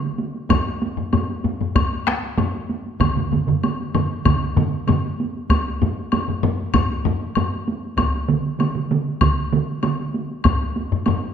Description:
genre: japanese traditional, taiko drum ensemble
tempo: 96 BPM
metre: 4/4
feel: straight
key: none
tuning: none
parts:
  - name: solo taiko drums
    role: percussion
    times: 0.0-11.3 s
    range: none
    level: -24 LUFS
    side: right 3 dB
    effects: none
  - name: taiko ensemble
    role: percussion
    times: 0.5-11.2 s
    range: none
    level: -23 LUFS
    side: left 4 dB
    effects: none
  - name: taiko ensemble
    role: percussion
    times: 0.5-10.6 s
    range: none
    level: -23 LUFS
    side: equal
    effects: none
  - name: woodblock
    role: percussion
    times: 0.5-11.2 s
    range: none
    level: -28 LUFS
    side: left 6 dB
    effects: none
  - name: taiko ensemble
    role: percussion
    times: 3.0-10.0 s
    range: none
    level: -22 LUFS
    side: right 6 dB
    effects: none
room: wet recital hall reverb, RT60 1.6 s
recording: none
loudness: -19 LUFS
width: side -8 dB against mid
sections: 0.0-11.3 A section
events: none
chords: none

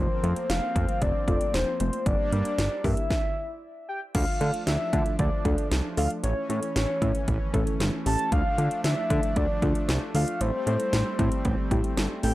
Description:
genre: synth-pop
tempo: 115 BPM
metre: 4/4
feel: straight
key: D minor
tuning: A4 = 440 Hz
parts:
  - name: soft octave-layered synth lead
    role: melody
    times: 0.0-12.3 s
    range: C5 to A5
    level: -30 LUFS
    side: left 1 dB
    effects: chorus, tape echo
  - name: brassy analog pad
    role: sustained chords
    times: 0.0-12.3 s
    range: E3 to D4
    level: -35 LUFS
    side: equal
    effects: chorus
  - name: fat analog bass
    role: bass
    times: 0.0-12.3 s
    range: E1 to D3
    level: -26 LUFS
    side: equal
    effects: none
  - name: soft round pluck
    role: accompaniment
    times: 0.2-12.3 s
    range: A3 to C5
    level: -33 LUFS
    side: left 1 dB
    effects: chorus
  - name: house drum kit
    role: drums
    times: 0.2-12.3 s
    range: crash cymbal, hi-hat, kick drum, snare drum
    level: -28 LUFS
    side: equal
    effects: overdrive
room: digital ambience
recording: dry, gritty hardware recording, transformer saturation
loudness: -23 LUFS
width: side -16 dB against mid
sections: 0.0-4.1 A section; 4.1-12.3 B section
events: stop 3.1-4.1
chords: 0.0 F; 2.1 Gm; 3.1 N.C.; 4.1 Dm; 6.2 A; 8.3 Dm; 10.4 Am7

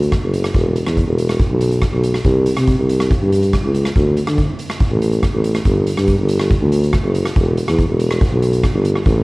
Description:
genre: calypso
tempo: 141 BPM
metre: 4/4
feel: straight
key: unclear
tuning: A4 = 440 Hz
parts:
  - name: mellow tuba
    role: bass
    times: 0.0-9.2 s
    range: E1 to D3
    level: -15 LUFS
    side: equal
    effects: none
  - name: street-band drum kit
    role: drums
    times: 0.0-9.2 s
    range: hi-hat, kick drum, rim click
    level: -18 LUFS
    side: equal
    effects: none
room: light reverb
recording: worn, warbling old tape, cassette tape, warbly pitch drift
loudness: -14 LUFS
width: side -24 dB against mid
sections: 0.0-9.2 A section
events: none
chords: none

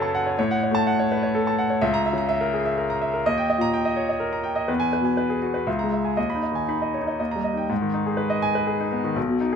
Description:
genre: classical, virtuoso piano study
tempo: 124 BPM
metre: 3/4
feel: rubato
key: G# minor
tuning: A4 = 440 Hz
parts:
  - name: bright grand piano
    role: solo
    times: 0.0-9.6 s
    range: B1 to B5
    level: -21 LUFS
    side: equal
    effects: none
room: moderate stone room reverb, RT60 0.9 s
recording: close, detailed microphones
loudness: -21 LUFS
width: side -7 dB against mid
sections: 0.0-7.7 A section; 7.7-9.6 B section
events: none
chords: 0.4 F#m/A; 1.8 A#dim/C#; 3.2 D#; 4.7 E; 5.7 A#m7b5/C#; 6.2 G#m/D#; 7.2 D#; 7.7 G#m

